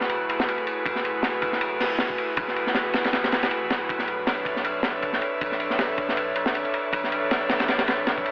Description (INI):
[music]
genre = drum and bass, jungle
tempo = 158 BPM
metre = 4/4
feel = swing 54% on 16ths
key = F# minor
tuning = A4 = 441 Hz
[part]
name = airy breathy pad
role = sustained chords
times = 0.0-8.3 s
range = A3 to E5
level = -26 LUFS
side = equal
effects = chorus
[part]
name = saturated sub bass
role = bass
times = 0.0-8.2 s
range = E1 to B1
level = -50 LUFS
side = equal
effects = tube saturation
[part]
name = crunchy breakbeat drum kit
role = drums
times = 0.0-8.3 s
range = hi-hat, kick drum, ride cymbal, snare drum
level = -24 LUFS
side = equal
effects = none
[sound]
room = moderate plate reverb, RT60 2.1 s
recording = vinyl crackle, telephone sound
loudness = -22 LUFS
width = side -34 dB against mid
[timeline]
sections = 0.0-8.3 A section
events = none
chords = 0.0 F#m11; 3.9 Bm11